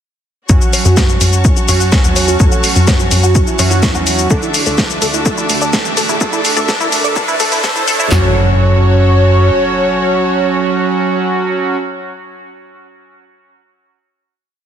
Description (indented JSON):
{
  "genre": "melodic techno",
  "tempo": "126 BPM",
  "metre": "4/4",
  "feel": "straight",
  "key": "F# minor",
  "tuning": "A4 = 440 Hz",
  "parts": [
    { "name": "fat analog lead", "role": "melody", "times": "0.5-11.8 s", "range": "E4 to C#5", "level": "-19 LUFS", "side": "right 1 dB", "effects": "lush chorus, cassette tape, sidechain pumping, tape echo" },
    { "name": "rich studio string section", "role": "sustained chords", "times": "0.5-11.8 s", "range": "F#4 to D6", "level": "-23 LUFS", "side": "left 2 dB", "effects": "vintage 12-bit sampler grit, sidechain pumping" },
    { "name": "tight sequenced synth", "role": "arpeggios", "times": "0.5-8.3 s", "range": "E4 to F#5", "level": "-22 LUFS", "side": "equal", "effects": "chorus, sidechain pumping, tape echo" },
    { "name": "sync-sweep polysynth", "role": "stabs", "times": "0.5-11.8 s", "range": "D3 to F#4", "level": "-18 LUFS", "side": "right 3 dB", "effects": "chorus, sidechain pumping, tape echo" },
    { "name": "tight sequencer bass", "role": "bass", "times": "0.5-9.5 s", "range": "D1 to F#2", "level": "-13 LUFS", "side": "equal", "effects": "sidechain pumping" },
    { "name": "punchy analog drum machine", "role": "drums", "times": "0.5-8.2 s", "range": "handclaps, kick drum, snare drum", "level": "-14 LUFS", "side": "equal", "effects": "none" },
    { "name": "techno drum kit", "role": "drums", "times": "0.5-8.1 s", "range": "hi-hat, shaker, snare drum", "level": "-16 LUFS", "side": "left 2 dB", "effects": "none" },
    { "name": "riser and impact", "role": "sound effects", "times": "3.5-11.8 s", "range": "none", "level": "-23 LUFS", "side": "equal", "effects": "none" }
  ],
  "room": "light reverb",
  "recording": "dense, heavily limited modern master, high-pass filter",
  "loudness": "-10 LUFS",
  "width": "side -9 dB against mid",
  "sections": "0.5-8.1 build; 8.1-11.9 final chord",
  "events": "build-up 0.5-8.1; filter sweep on synth arpeggio sound 0.5-8.1; filter sweep on analog synth lead 0.5-8.1; filter sweep 0.5-8.1; riser 3.5-8.1",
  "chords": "0.5 F#m; 4.3 Dadd9; 8.1 F#m",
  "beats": "| 0.49 0.97 1.45 1.92 | 2.40 2.88 3.35 3.83 | 4.30 4.78 5.26 5.73 | 6.21 6.69 7.16 7.64 | 8.11 8.59 9.07 9.54 | 10.02 10.49 10.97 11.45"
}